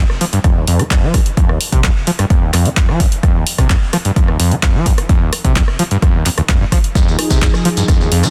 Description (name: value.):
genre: acid house.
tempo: 129 BPM.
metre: 4/4.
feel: straight.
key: F minor.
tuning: A4 = 439 Hz.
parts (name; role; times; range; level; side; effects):
overdriven acid bass; riff; 0.0-8.3 s; Eb2 to F3; -18 LUFS; equal; lush chorus, sidechain pumping, tape echo.
punchy analog drum machine; drums; 0.1-8.3 s; handclaps, hi-hat, rim click; -22 LUFS; equal; overdrive.
electronic kick drum; drums; 0.4-8.0 s; none; -15 LUFS; equal; overdrive.
warm analog pad; sustained chords; 7.0-8.3 s; F3 to Ab4; -22 LUFS; equal; chorus, sidechain pumping.
shekere; percussion; 7.0-8.3 s; none; -27 LUFS; equal; none.
room: little or no reverb.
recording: dense, heavily limited modern master.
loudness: -14 LUFS.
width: mono.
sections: 0.0-8.3 A section.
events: none.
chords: 0.0 Fm7.